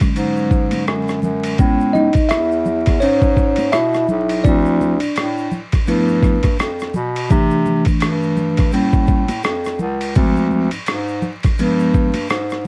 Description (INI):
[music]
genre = hip hop, jazz-hop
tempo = 84 BPM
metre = 4/4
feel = swing 58% on 16ths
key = unclear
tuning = A4 = 440 Hz
[part]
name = bell-like tine electric piano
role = accompaniment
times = 0.0-12.1 s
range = D3 to E5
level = -19 LUFS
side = equal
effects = none
[part]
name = boom bap sampler-style drum kit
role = drums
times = 0.0-12.6 s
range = hi-hat, kick drum, ride cymbal, rim click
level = -21 LUFS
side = equal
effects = overdrive
[part]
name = egg shaker and congas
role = percussion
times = 0.0-12.7 s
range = none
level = -29 LUFS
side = equal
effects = none
[part]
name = clear bass clarinet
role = bass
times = 0.2-12.6 s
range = B1 to C3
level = -24 LUFS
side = equal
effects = none
[sound]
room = light reverb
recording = worn, warbling old tape, cassette tape, vinyl crackle, warbly pitch drift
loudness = -17 LUFS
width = mono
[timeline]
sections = 0.0-12.7 A section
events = tine electric piano solo 0.0-12.7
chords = 0.0 E13 (rootless); 1.6 Amaj9; 4.4 Dm7; 5.9 G13; 7.3 C6; 8.7 A7b9; 10.2 Dm7b5; 11.6 G7b9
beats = 0.16 0.87 | 1.59 2.30 3.02 3.73 | 4.45 5.16 5.87 6.59 | 7.30 8.02 8.73 9.45 | 10.16 10.87 11.59 12.30